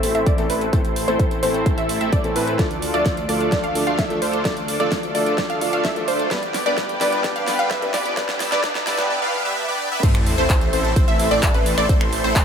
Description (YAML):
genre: EDM, festival progressive house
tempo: 129 BPM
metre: 4/4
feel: straight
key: A minor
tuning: A4 = 440 Hz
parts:
  - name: warm grand piano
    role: accompaniment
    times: 0.0-9.1 s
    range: G2 to B4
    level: -27 LUFS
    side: left 1 dB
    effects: sidechain pumping, dub echo
  - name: lush unison pad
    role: sustained chords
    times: 0.0-12.4 s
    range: A4 to E6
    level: -29 LUFS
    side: right 1 dB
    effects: chorus, sidechain pumping
  - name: wide unison pluck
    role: arpeggios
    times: 0.0-12.4 s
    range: B4 to F5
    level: -25 LUFS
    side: equal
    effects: sidechain pumping, dub echo
  - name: supersaw chords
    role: riff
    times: 0.0-12.4 s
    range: A3 to F5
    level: -23 LUFS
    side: equal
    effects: analog chorus, sidechain pumping, low-pass filter, dub echo
  - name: wide detuned saw bass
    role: bass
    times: 0.0-12.4 s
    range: G1 to A2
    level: -29 LUFS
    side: equal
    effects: chorus, sidechain pumping
  - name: big-room dance drum kit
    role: drums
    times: 0.0-12.4 s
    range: crash cymbal, finger snaps, handclaps, hi-hat, snare drum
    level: -27 LUFS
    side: right 1 dB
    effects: none
  - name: electronic kick drum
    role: drums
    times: 0.3-12.4 s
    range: none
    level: -20 LUFS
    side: equal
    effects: none
  - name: riser and sub drop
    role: sound effects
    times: 6.2-11.9 s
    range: none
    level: -32 LUFS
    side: equal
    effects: none
room: light reverb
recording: high-pass filter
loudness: -17 LUFS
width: side -7 dB against mid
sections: 0.0-10.0 A section; 10.0-12.4 B section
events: build-up 0.0-10.0; filter sweep on supersaw synth 0.0-10.0; filter sweep on synth pluck 0.0-10.0; filter sweep on analog synth pad 0.0-10.0; filter sweep 0.0-10.0; drum fill 2.6-9.1; drop 10.0-12.4; impact 10.0-11.9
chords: 0.0 Am; 2.6 Dm; 6.3 G; 10.0 Am